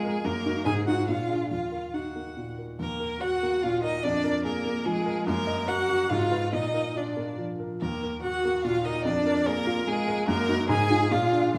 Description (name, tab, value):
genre	quick classical-period movement for piano trio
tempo	144 BPM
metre	3/4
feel	straight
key	Eb minor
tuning	A4 = 441 Hz
part	rich violin	melody	0.0-11.6 s	Ab4 to Ab5	-33 LUFS	equal	none
part	rich cello	second line	0.0-11.6 s	Ab3 to Ab4	-32 LUFS	equal	none
part	warm grand piano	accompaniment	0.0-11.6 s	Eb2 to Eb5	-31 LUFS	equal	none
room	wet recital hall reverb, RT60 1.5 s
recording	none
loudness	-27 LUFS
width	mono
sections	0.0-2.8 A section; 2.8-11.6 B section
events	none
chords	0.3 Ebm/Gb; 0.7 Ebmadd11/Ab; 1.1 Bb7; 1.5 Ebm; 4.0 Bb7/F; 5.3 Ebm/Gb; 6.1 Fdim/Ab; 6.5 Bb; 7.8 Ebm; 9.1 Bb7/F; 10.3 Ebm/Gb; 10.7 Fm7/Ab; 11.1 Bb7